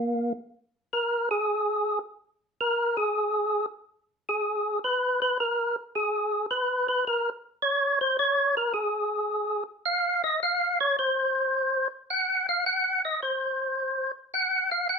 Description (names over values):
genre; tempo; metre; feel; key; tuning
jazz; 107 BPM; 4/4; swing 69% on 8ths; unclear; A4 = 444 Hz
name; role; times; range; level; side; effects
percussive tonewheel organ; solo; 0.0-15.0 s; Bb3 to Gb5; -24 LUFS; equal; slow rotary speaker, overdrive
room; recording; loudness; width
moderate studio reverb, RT60 0.6 s; minimal, uncompressed stereo recording; -24 LUFS; side -5 dB against mid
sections
0.0-15.0 A section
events
tonewheel organ solo 0.0-15.0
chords
none